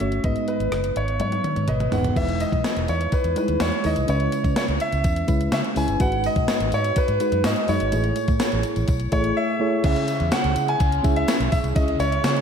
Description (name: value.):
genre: 1980s-style pop.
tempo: 125 BPM.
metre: 4/4.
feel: straight.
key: C# minor.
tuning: A4 = 444 Hz.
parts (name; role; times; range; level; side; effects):
clear grand piano; melody; 0.0-12.4 s; B4 to G#5; -25 LUFS; equal; slapback echo.
mellow FM electric piano; accompaniment; 0.0-12.4 s; G#2 to E5; -26 LUFS; equal; chorus.
vintage muted fingered electric bass; bass; 0.0-12.4 s; D#1 to C#3; -25 LUFS; equal; none.
gated 80s digital drum machine; drums; 0.0-12.4 s; crash cymbal, hi-hat, kick drum, rim click, snare drum, tambourine, toms; -24 LUFS; equal; gated reverb, gated reverb snare, overdrive.
tambourine; percussion; 2.2-12.4 s; none; -44 LUFS; left 7 dB; none.
overdriven electric guitar; accompaniment; 9.8-12.4 s; C#3 to C#4; -33 LUFS; equal; analog chorus, slapback echo.
room: moderate lush hall reverb, RT60 1.7 s.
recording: big arena sound.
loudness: -19 LUFS.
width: side -7 dB against mid.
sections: 0.0-2.2 A section; 2.2-9.8 B section; 9.8-12.4 C section.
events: drum fill 1.2-2.2.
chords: 0.2 G#m; 2.2 Emaj7; 4.1 C#m7; 6.0 G#m7; 7.9 Amaj7; 9.8 C#m.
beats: | 0.24 0.72 1.20 1.68 | 2.16 2.64 3.12 3.60 | 4.08 4.56 5.04 5.52 | 6.00 6.48 6.96 7.44 | 7.92 8.40 8.88 9.36 | 9.84 10.32 10.80 11.28 | 11.76 12.24.